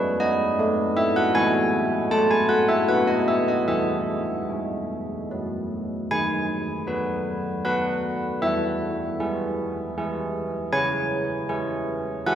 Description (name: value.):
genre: classical, tune for church bells.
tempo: 78 BPM.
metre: 3/4.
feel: straight.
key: E major.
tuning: A4 = 440 Hz.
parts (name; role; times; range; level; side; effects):
carillon bells; solo; 0.0-12.3 s; D#3 to A5; -22 LUFS; equal; none.
room: wet cathedral reverb, RT60 3.9 s.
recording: heard from further back in the room.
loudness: -22 LUFS.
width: side -9 dB against mid.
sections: 0.0-6.1 A section; 6.1-12.3 B section.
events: none.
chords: 0.0 F#m13; 1.3 E/G#; 2.1 F#m/A; 2.9 B5; 3.7 E; 6.1 B/D#; 8.4 E; 10.7 C#m.